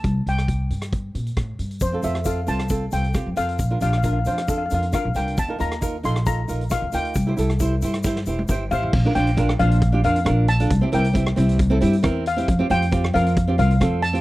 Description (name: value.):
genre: calypso.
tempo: 135 BPM.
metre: 4/4.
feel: straight.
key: F major.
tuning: A4 = 439 Hz.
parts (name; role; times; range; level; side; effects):
steel pan; melody; 0.0-14.2 s; C5 to C6; -26 LUFS; left 3 dB; none.
upright bass; bass; 0.0-14.2 s; E1 to Bb2; -21 LUFS; equal; none.
vintage drum kit; drums; 0.0-14.2 s; crash cymbal, hi-hat, kick drum, rim click, snare drum, toms; -27 LUFS; equal; none.
egg shaker; percussion; 1.8-8.8 s; none; -40 LUFS; left 9 dB; none.
flamenco guitar; accompaniment; 1.9-14.2 s; C4 to G5; -25 LUFS; right 2 dB; none.
room: little or no reverb.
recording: dry, close 1970s-style studio recording.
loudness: -18 LUFS.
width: side -18 dB against mid.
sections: 0.0-8.9 A section; 8.9-14.2 B section.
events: drum fill 8.0-8.9; nylon-string guitar fill 8.0-8.9.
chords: 0.0 C5; 1.8 F; 3.6 Bbadd9; 5.4 Ebsus2; 7.2 C; 8.9 Bb; 10.7 C; 12.5 Fsus2.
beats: | 0.04 0.48 0.93 1.37 | 1.82 2.26 2.71 3.15 | 3.60 4.04 4.49 4.93 | 5.38 5.82 6.27 6.71 | 7.16 7.60 8.05 8.49 | 8.94 9.38 9.82 10.27 | 10.71 11.15 11.60 12.04 | 12.48 12.93 13.37 13.81.